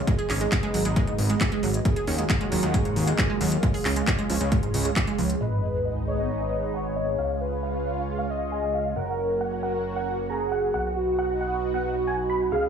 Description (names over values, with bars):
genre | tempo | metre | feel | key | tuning
uplifting trance | 135 BPM | 4/4 | straight | G# dorian | A4 = 441 Hz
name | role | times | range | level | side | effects
analog string pad | sustained chords | 0.0-12.7 s | D#3 to F#4 | -32 LUFS | right 1 dB | ensemble chorus, phaser, sidechain pumping
fat analog bass | bass | 0.0-12.7 s | F#1 to D#2 | -30 LUFS | equal | sidechain pumping
analog pluck | arpeggios | 0.1-5.2 s | G#2 to G#4 | -28 LUFS | right 4 dB | chorus, sidechain pumping, tape echo
electronic kick drum | drums | 0.1-5.1 s | none | -26 LUFS | equal | none
techno drum kit | drums | 0.1-5.4 s | handclaps, hi-hat | -30 LUFS | equal | none
supersaw stab | melody | 5.4-12.7 s | D#5 to B5 | -32 LUFS | right 1 dB | sidechain pumping, low-pass filter, tape echo
warm velvety synth lead | second line | 5.4-12.7 s | F#4 to D#5 | -28 LUFS | equal | chorus, tape echo
sub drop | sound effects | 5.4-7.2 s | none | -31 LUFS | equal | none
room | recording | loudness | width
moderate digital room reverb, RT60 0.9 s, digital ambience | studio reverb | -23 LUFS | side -7 dB against mid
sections
0.0-5.4 A section; 5.4-12.7 B section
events
filter sweep on analog synth pad 0.0-5.4; impact 5.4-7.2; filter sweep on supersaw synth 5.4-12.7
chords
0.1 G#m; 1.9 D#m7; 3.6 C#; 5.4 G#m; 7.2 C#; 9.0 F#; 10.7 B